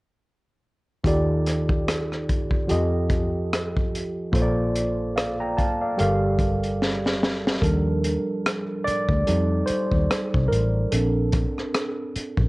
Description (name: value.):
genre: R&B, neo-soul.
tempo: 73 BPM.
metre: 4/4.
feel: swing 59% on 16ths.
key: unclear.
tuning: A4 = 438 Hz.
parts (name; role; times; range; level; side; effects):
tine electric piano; accompaniment; 1.0-12.5 s; Eb3 to Bb5; -24 LUFS; right 1 dB; overdrive, analog chorus.
crunchy breakbeat drum kit; drums; 1.0-12.5 s; hi-hat, kick drum, rim click, snare drum; -25 LUFS; equal; none.
vintage muted fingered electric bass; bass; 1.1-12.5 s; G1 to F2; -25 LUFS; equal; none.
room: little or no reverb.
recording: worn, warbling old tape, cassette tape, warbly pitch drift.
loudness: -21 LUFS.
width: side -22 dB against mid.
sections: 1.0-7.6 A section; 7.6-12.5 B section.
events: drum fill 6.8-7.6; tine electric piano solo 7.6-12.5.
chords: 1.0 Ebmaj9#11; 2.7 F7; 4.3 Bbmaj7; 6.0 Gm9; 7.6 Ebmaj9#11; 9.3 F7; 10.9 Bbmaj7.